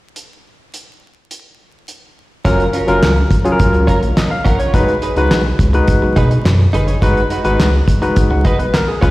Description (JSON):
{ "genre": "early-eighties boogie funk", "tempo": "105 BPM", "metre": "4/4", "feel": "straight", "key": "F# major", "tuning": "A4 = 440 Hz", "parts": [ { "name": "damped 70s drum kit", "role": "drums", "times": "0.2-9.1 s", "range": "handclaps, hi-hat, kick drum, snare drum", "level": "-16 LUFS", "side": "equal", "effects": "none" }, { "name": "barky tine electric piano", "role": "accompaniment", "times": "2.4-9.1 s", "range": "F#3 to F#5", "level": "-16 LUFS", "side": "left 1 dB", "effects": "slapback echo" }, { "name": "direct-recorded clean electric guitar", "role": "riff", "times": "2.4-9.1 s", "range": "C#4 to C#5", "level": "-21 LUFS", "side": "right 2 dB", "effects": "lush chorus, slapback echo" }, { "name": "rubbery square bass", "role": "bass", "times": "2.5-9.1 s", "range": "F#1 to B2", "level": "-15 LUFS", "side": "equal", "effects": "none" } ], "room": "light reverb, small room ambience", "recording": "live gig heard through the venue's PA, recital hall reverb, vinyl crackle", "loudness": "-11 LUFS", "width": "side -18 dB against mid", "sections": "0.2-2.5 A section; 2.5-9.1 B section", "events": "none", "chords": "0.2 N.C.; 2.5 F#maj7; 4.7 B6; 7.0 G#m7" }